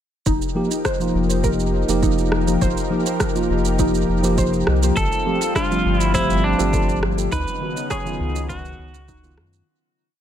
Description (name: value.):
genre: sunset chillout.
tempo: 102 BPM.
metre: 4/4.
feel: straight.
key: unclear.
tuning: A4 = 440 Hz.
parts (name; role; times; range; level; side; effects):
lush unison pad; sustained chords; 0.3-9.6 s; Db3 to Bb4; -26 LUFS; equal; chorus.
soft round pluck; arpeggios; 0.3-9.4 s; D4 to Db5; -29 LUFS; right 2 dB; analog chorus, tape echo.
warm sub bass; bass; 0.3-9.6 s; F1 to Gb2; -23 LUFS; equal; none.
electronic kick drum; drums; 0.3-9.2 s; none; -26 LUFS; equal; overdrive.
electronic shaker and rim click; drums; 0.3-9.6 s; none; -28 LUFS; right 3 dB; overdrive, tape echo.
tine electric piano; accompaniment; 0.5-9.7 s; Eb3 to G4; -23 LUFS; moving between left 4 dB and right 3 dB; auto-pan, tape echo.
clean electric guitar; melody; 5.0-9.3 s; D4 to Cb5; -24 LUFS; equal; tape echo.
room: light reverb.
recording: echo-heavy mix.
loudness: -17 LUFS.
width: side -10 dB against mid.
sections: 0.3-9.7 groove.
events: fade-out 6.5-9.7.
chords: 0.3 F9sus4; 5.0 G9sus4; 7.3 Db9sus4.